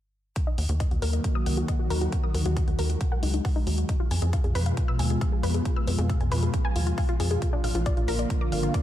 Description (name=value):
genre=uplifting trance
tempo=136 BPM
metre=4/4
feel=straight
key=Eb minor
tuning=A4 = 440 Hz
part: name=lush unison pad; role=sustained chords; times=1.0-8.8 s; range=Cb3 to Gb4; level=-30 LUFS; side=equal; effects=chorus, vintage 12-bit sampler grit, sidechain pumping
part: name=electronic hi-hat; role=drums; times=0.4-8.8 s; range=none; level=-38 LUFS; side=left 2 dB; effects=sidechain pumping on hats, studio ambience
part: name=electronic kick drum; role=drums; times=0.4-8.8 s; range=none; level=-26 LUFS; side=equal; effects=studio ambience
part: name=wide unison pluck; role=arpeggios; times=0.5-8.8 s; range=D4 to Fb6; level=-33 LUFS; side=left 2 dB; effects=auto-pan, sidechain pumping, analog delay
part: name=tight sequencer bass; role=bass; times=0.6-8.7 s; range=Ab1 to F2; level=-26 LUFS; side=equal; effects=sidechain pumping
room=light reverb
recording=lossy compression artefacts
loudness=-23 LUFS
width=side -12 dB against mid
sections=0.4-8.8 A section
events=filter sweep on analog synth pad 0.4-8.8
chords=0.4 Ebm; 3.9 Fdim; 7.4 Bb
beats=| 0.36 0.80 1.24 1.68 | 2.12 2.57 3.01 3.45 | 3.89 4.33 4.77 5.21 | 5.66 6.10 6.54 6.98 | 7.42 7.86 8.30 8.74